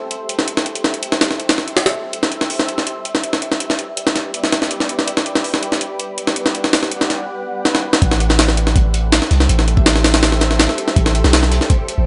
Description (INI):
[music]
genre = drum and bass, jungle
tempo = 163 BPM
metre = 4/4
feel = straight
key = A minor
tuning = A4 = 440 Hz
[part]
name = granular cloud pad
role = sustained chords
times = 0.0-12.1 s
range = G4 to F#5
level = -28 LUFS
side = equal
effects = built-in reverb, vintage 12-bit sampler grit
[part]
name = jungle sampler-style drum kit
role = drums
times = 0.1-12.0 s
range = hi-hat, kick drum, snare drum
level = -18 LUFS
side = equal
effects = none
[part]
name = long sustained 808-style bass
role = bass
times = 8.0-12.1 s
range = A1 to C2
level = -18 LUFS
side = equal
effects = none
[part]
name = crunchy breakbeat drum kit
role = drums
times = 8.0-12.0 s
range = hi-hat, snare drum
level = -30 LUFS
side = equal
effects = none
[sound]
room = light reverb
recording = nothing above 10.7 kHz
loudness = -17 LUFS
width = mono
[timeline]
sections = 0.0-8.0 A section; 8.0-12.1 B section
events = filter sweep on ambient pad 0.0-8.0; drum fill 7.7-8.0; drop 8.0-12.1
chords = 0.0 Am7; 2.1 Em7; 8.0 Am7